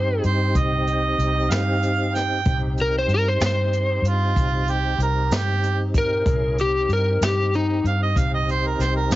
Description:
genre	slow blues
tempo	63 BPM (dotted quarters)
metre	12/8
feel	straight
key	C minor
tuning	A4 = 440 Hz
part	electric slide guitar	melody	0.0-7.8 s	Eb4 to C5	-22 LUFS	left 2 dB	none
part	tonewheel organ	sustained chords	0.0-9.2 s	C4 to Ab4	-29 LUFS	equal	slow rotary speaker, chorus vibrato
part	vintage muted fingered electric bass	bass	0.0-9.2 s	C2 to G2	-22 LUFS	equal	none
part	mellow harmonica	second line	0.2-9.2 s	F4 to G5	-25 LUFS	right 4 dB	none
part	jazz brush drum kit	drums	0.2-9.2 s	hi-hat, kick drum, snare drum	-25 LUFS	equal	none
room	little or no reverb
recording	heavily compressed radio sound, nothing above 7.6 kHz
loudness	-19 LUFS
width	side -16 dB against mid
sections	0.0-9.2 A section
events	none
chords	0.0 Cm

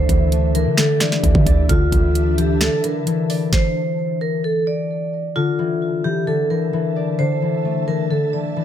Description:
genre	hip hop, trap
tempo	131 BPM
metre	4/4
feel	half-time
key	D minor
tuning	A4 = 440 Hz
part	vibraphone with medium mallets	melody	0.0-8.6 s	F4 to D5	-22 LUFS	right 2 dB	none
part	concert harp	accompaniment	0.0-8.6 s	D3 to D5	-21 LUFS	left 5 dB	none
part	ethereal airy pad	sustained chords	0.0-8.6 s	D3 to A5	-29 LUFS	equal	ensemble chorus, built-in reverb
part	warm 808-style bass	bass	0.0-2.7 s	D2 to D3	-18 LUFS	right 1 dB	none
part	trap drum kit	drums	0.1-3.6 s	finger snaps, hi-hat, kick drum, snare drum	-18 LUFS	right 1 dB	none
room	digital ambience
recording	none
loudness	-16 LUFS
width	side -10 dB against mid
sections	0.0-5.4 A section; 5.4-8.6 B section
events	stop 3.5-5.4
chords	0.0 Dsus2

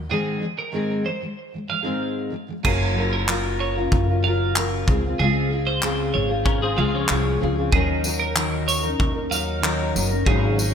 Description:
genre	acoustic pop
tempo	95 BPM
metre	4/4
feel	straight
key	unclear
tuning	A4 = 440 Hz
part	fingerpicked steel-string acoustic guitar	accompaniment	0.0-10.7 s	Ab2 to Bb4	-24 LUFS	left 1 dB	double-tracked left and right
part	upright bass	bass	0.0-10.7 s	Gb1 to Eb2	-24 LUFS	equal	none
part	twelve-string electric guitar	arpeggios	0.1-10.4 s	Ab4 to F5	-28 LUFS	right 5 dB	lush chorus, digital delay
part	modern studio drum kit	drums	2.6-10.7 s	crash cymbal, handclaps, kick drum, tambourine	-24 LUFS	equal	none
part	twelve-string electric guitar	second line	6.5-7.7 s	F3 to Bb4	-27 LUFS	left 5 dB	ensemble chorus
room	light reverb, studio reverb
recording	bright 1980s-style digital production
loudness	-20 LUFS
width	side -7 dB against mid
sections	0.0-2.7 A section; 2.7-10.7 B section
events	none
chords	0.1 Ab; 2.7 Gbmaj7; 4.9 Dbmaj7; 7.7 Ebm7

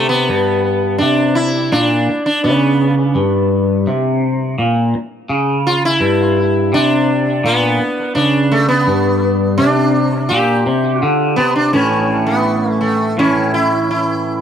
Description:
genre	rock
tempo	84 BPM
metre	4/4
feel	straight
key	unclear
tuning	A4 = 440 Hz
part	sitar	melody	0.0-14.4 s	A3 to G4	-16 LUFS	equal	analog delay
part	twangy electric guitar	riff	0.0-14.4 s	G2 to E4	-15 LUFS	equal	phaser
room	light reverb, small room ambience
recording	echo-heavy mix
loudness	-12 LUFS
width	side -8 dB against mid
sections	0.0-11.7 A section; 11.7-14.4 B section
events	none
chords	0.0 G; 11.7 A

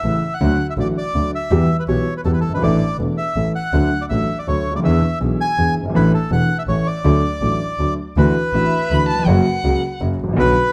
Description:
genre	tango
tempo	163 BPM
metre	3/4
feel	rubato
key	D major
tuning	A4 = 440 Hz
part	bandoneon	melody	0.0-10.7 s	A4 to G#5	-24 LUFS	equal	tape echo
part	warm grand piano	accompaniment	0.0-10.5 s	E1 to A4	-21 LUFS	equal	none
part	clear double bass	bass	0.0-10.5 s	E1 to E2	-23 LUFS	equal	none
part	warm violin	second line	8.5-10.0 s	E5 to B5	-26 LUFS	equal	none
room	moderate studio reverb, RT60 0.7 s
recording	dark, warm production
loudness	-18 LUFS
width	mono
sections	0.0-8.2 A section; 8.2-10.7 B section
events	none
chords	0.4 D; 1.5 Em; 2.6 Asus4; 3.4 A; 3.7 D; 4.8 E7; 6.0 Asus4; 6.7 A; 7.0 D; 8.2 Dadd9; 9.3 F#

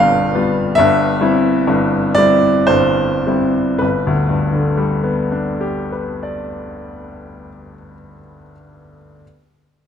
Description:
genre	classical, romantic nocturne for solo piano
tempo	50-75 BPM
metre	3/4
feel	rubato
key	G major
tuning	A4 = 441 Hz
part	clear baby grand piano	solo	0.0-9.2 s	G1 to G5	-14 LUFS	equal	none
room	moderate recital hall reverb, RT60 1.7 s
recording	dark, warm production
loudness	-13 LUFS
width	side -8 dB against mid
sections	0.0-3.8 A section; 3.8-7.1 B section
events	slowing down 0.0-3.8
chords	0.0 G7; 0.7 C/G; 3.8 G

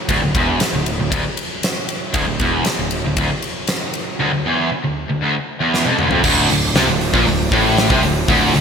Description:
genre	hard rock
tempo	117 BPM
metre	4/4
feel	straight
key	D minor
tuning	A4 = 438 Hz
part	cranked stack guitar	riff	0.1-8.6 s	D2 to C3	-21 LUFS	left 8 dB	overdrive
part	sludgy distorted guitar	riff	0.1-8.6 s	D2 to C3	-20 LUFS	right 8 dB	overdrive
part	fuzz picked electric bass	bass	0.1-8.6 s	D1 to C2	-23 LUFS	equal	overdrive
part	huge arena drum kit	drums	0.1-8.6 s	crash cymbal, hi-hat, kick drum, ride cymbal, snare drum, toms	-20 LUFS	equal	gated reverb
part	overdriven tonewheel organ	sustained chords	6.3-8.6 s	F3 to D4	-27 LUFS	right 1 dB	none
part	heavy high-gain guitar	riff	6.3-8.6 s	D2 to C3	-20 LUFS	equal	distortion
room	moderate lush hall reverb, RT60 2.2 s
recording	bright 1980s-style digital production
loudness	-15 LUFS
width	side -6 dB against mid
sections	0.0-6.2 A section; 6.2-8.6 B section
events	drum fill 5.7-6.2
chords	0.0 N.C.; 6.2 Dm

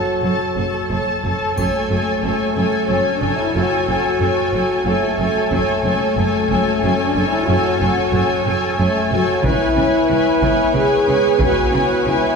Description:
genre	cinematic, epic orchestral film score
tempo	92 BPM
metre	3/4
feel	straight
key	F# minor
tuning	A4 = 436 Hz
part	clear symphonic violin section	melody	0.0-12.4 s	G#5 to A5	-24 LUFS	left 2 dB	none
part	warm symphonic violin section	second line	0.0-12.4 s	C#5	-25 LUFS	equal	none
part	rich symphonic viola section	accompaniment	0.0-12.4 s	A4 to B4	-24 LUFS	right 1 dB	none
part	warm French horn section	sustained chords	0.0-12.4 s	A3 to G#4	-20 LUFS	left 2 dB	none
part	rich studio double bass section	bass	0.2-12.1 s	F#1 to C#2	-25 LUFS	right 3 dB	none
part	rich symphonic cello section	bass	0.2-12.1 s	F#2 to C#3	-24 LUFS	right 2 dB	none
part	rich symphonic string section	sustained chords	1.6-12.4 s	B3 to G#5	-25 LUFS	equal	none
part	taiko ensemble	drums	1.6-12.0 s	none	-25 LUFS	equal	none
part	triangle	percussion	1.6-2.9 s	none	-42 LUFS	left 3 dB	none
room	wet scoring stage reverb, RT60 1.6 s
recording	heard from further back in the room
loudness	-15 LUFS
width	side -5 dB against mid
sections	0.0-1.6 A section; 1.6-12.4 A section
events	none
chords	0.0 F#m; 1.6 F#madd9; 9.4 C#m7

